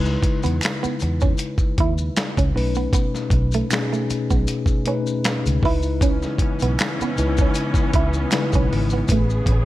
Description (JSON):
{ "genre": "R&B, neo-soul", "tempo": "78 BPM", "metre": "4/4", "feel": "swing 53% on 16ths", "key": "C# minor", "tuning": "A4 = 440 Hz", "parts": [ { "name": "mellow tine electric piano", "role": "accompaniment", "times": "0.0-9.7 s", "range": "A2 to B4", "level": "-24 LUFS", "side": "left 2 dB", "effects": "slow stereo tremolo" }, { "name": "vintage muted fingered electric bass", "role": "bass", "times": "0.0-9.7 s", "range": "G#1 to E2", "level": "-22 LUFS", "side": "equal", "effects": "none" }, { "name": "dusty soul sampler-style drum kit", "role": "drums", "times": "0.1-9.7 s", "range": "finger snaps, hi-hat, kick drum, snare drum", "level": "-21 LUFS", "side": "equal", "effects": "none" }, { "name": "maracas and finger snaps", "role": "percussion", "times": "0.1-9.5 s", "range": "none", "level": "-33 LUFS", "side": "equal", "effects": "none" }, { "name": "semi-hollow electric guitar", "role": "second line", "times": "0.2-9.6 s", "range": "A3 to E4", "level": "-26 LUFS", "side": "right 6 dB", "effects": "wide subtle chorus" }, { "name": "warm studio string section", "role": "sustained chords", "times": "6.0-9.7 s", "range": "C#3 to G#4", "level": "-29 LUFS", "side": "equal", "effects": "none" } ], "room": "digital ambience", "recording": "none", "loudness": "-18 LUFS", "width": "side -15 dB against mid", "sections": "0.0-9.7 A section", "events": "none", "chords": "0.0 C#m9; 2.5 B9; 5.6 C#m9; 9.1 Amaj9", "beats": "0.63 1.40 2.17 | 2.93 3.70 4.47 5.24 | 6.01 6.78 7.55 8.32 | 9.09" }